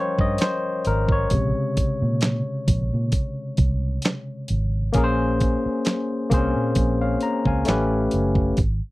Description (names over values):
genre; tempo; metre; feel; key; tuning
R&B, neo-soul; 66 BPM; 4/4; swing 54% on 16ths; Bb minor; A4 = 440 Hz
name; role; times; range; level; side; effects
barky tine electric piano; accompaniment; 0.0-8.6 s; C3 to Bb5; -23 LUFS; left 2 dB; none
vintage muted fingered electric bass; bass; 0.2-8.8 s; Gb1 to Bb2; -23 LUFS; right 1 dB; none
dusty soul sampler-style drum kit; drums; 0.2-8.8 s; handclaps, hi-hat, kick drum, snare drum; -23 LUFS; right 1 dB; none
room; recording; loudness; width
little or no reverb; dry, close 1970s-style studio recording; -20 LUFS; side -19 dB against mid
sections
0.0-4.9 A section; 4.9-8.9 B section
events
tine electric piano solo 0.0-4.9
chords
0.0 Eb9; 1.3 Bbm9; 7.7 A9